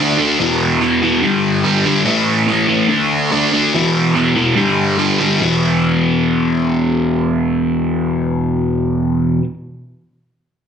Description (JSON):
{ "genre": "rock", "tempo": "144 BPM", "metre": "4/4", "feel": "straight", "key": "E minor", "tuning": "A4 = 441 Hz", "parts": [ { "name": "crunchy overdriven guitar", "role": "solo", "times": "0.0-9.4 s", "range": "E2 to D4", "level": "-13 LUFS", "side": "equal", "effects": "phaser, slapback echo" } ], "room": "wet large studio reverb, RT60 1.1 s", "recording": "dense, heavily limited modern master", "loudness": "-13 LUFS", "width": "side -7 dB against mid", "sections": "0.0-5.4 A section; 5.4-8.7 B section", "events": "none", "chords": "0.4 E5; 1.2 G5; 2.1 A5; 2.9 D5; 3.7 E5; 4.6 G5; 5.4 E5" }